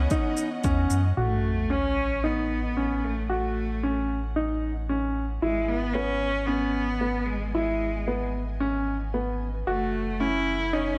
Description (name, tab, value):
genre	piano and strings electronica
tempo	113 BPM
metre	4/4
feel	straight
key	unclear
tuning	A4 = 440 Hz
part	rich cello	melody	0.0-11.0 s	G#3 to E4	-32 LUFS	equal	none
part	dark studio string section	sustained chords	0.0-11.0 s	E3 to G#5	-44 LUFS	equal	sidechain pumping
part	warm sub bass	bass	0.0-11.0 s	F#1 to F#2	-32 LUFS	equal	sidechain pumping
part	clear upright piano	riff	0.1-11.0 s	B3 to F#4	-30 LUFS	equal	low-pass filter, tape echo
part	electronic kick drum	drums	0.1-0.8 s	none	-29 LUFS	equal	overdrive
part	shaker	drums	0.1-1.0 s	none	-38 LUFS	equal	overdrive, low-pass filter on perc
part	sub drop	sound effects	1.2-3.3 s	none	-34 LUFS	equal	none
room	light reverb, small room ambience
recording	none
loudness	-27 LUFS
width	mono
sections	0.0-1.2 A section; 1.2-11.0 B section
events	filter sweep on upright piano 0.0-1.2, 1.2-11.0; fade-in on string section 1.2-11.0; impact 1.2-3.3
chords	0.0 C#m11; 1.2 A6; 5.4 Emaj7/G#; 9.7 F#m7